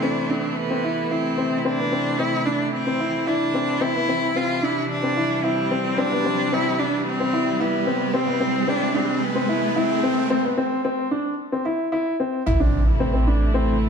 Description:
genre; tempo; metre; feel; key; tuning
piano and strings electronica; 111 BPM; 4/4; straight; unclear; A4 = 437 Hz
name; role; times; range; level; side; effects
clear cello; melody; 0.0-10.3 s; B3 to F4; -24 LUFS; equal; tape echo
warm studio string section; sustained chords; 0.0-13.9 s; C3 to E4; -28 LUFS; right 1 dB; none
dark upright piano; riff; 0.0-13.8 s; B3 to E4; -23 LUFS; left 1 dB; tape echo
warm sub bass; bass; 0.0-13.9 s; A1; -21 LUFS; right 1 dB; high-pass filter
riser and impact; sound effects; 2.6-13.9 s; none; -29 LUFS; equal; none
room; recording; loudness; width
wet echo chamber reverb, RT60 1.2 s; none; -20 LUFS; side -6 dB against mid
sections
0.0-12.5 A section; 12.5-13.9 B section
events
build-up 0.0-12.5; riser 2.6-10.3; break 10.3-12.5; drop 12.5-13.9; impact 12.5-13.9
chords
0.0 Am; 3.8 C/A; 12.5 Am

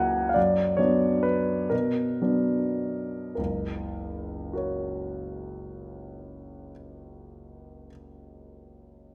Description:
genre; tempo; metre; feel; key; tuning
classical, piano waltz; 96-147 BPM; 3/4; rubato; F# major; A4 = 442 Hz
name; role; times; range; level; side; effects
clear grand piano; solo; 0.0-9.1 s; F#1 to A#5; -28 LUFS; equal; none
room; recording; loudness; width
moderate recital hall reverb, RT60 1.5 s; none; -27 LUFS; mono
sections
0.0-3.4 A section; 3.4-6.9 B section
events
slowing down 0.0-3.4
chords
0.4 Bm/F#; 3.4 F#

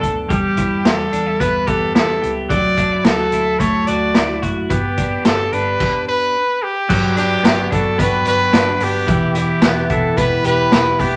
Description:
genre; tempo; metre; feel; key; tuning
jangly indie pop; 109 BPM; 4/4; straight; unclear; A4 = 440 Hz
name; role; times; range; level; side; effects
brilliant trumpet; melody; 0.0-11.2 s; G4 to D5; -21 LUFS; equal; none
twelve-string electric guitar; arpeggios; 0.0-11.2 s; E3 to A4; -22 LUFS; equal; none
vintage muted picked electric bass; bass; 0.0-11.2 s; E1 to E2; -29 LUFS; equal; none
raw garage drum kit; drums; 0.0-11.1 s; crash cymbal, hi-hat, kick drum, snare drum; -21 LUFS; equal; none
picked twelve-string acoustic guitar; accompaniment; 6.9-11.2 s; E3 to G4; -29 LUFS; equal; none
tambourine; percussion; 6.9-11.1 s; none; -43 LUFS; equal; none
glockenspiel with rubber mallets; second line; 10.2-11.2 s; G5 to B5; -27 LUFS; equal; none
room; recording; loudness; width
wet studio reverb, RT60 0.7 s; none; -16 LUFS; mono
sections
0.0-6.9 A section; 6.9-11.2 B section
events
none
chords
0.3 Em; 2.5 Dadd9; 4.7 G; 6.9 Gmaj7; 9.1 Em

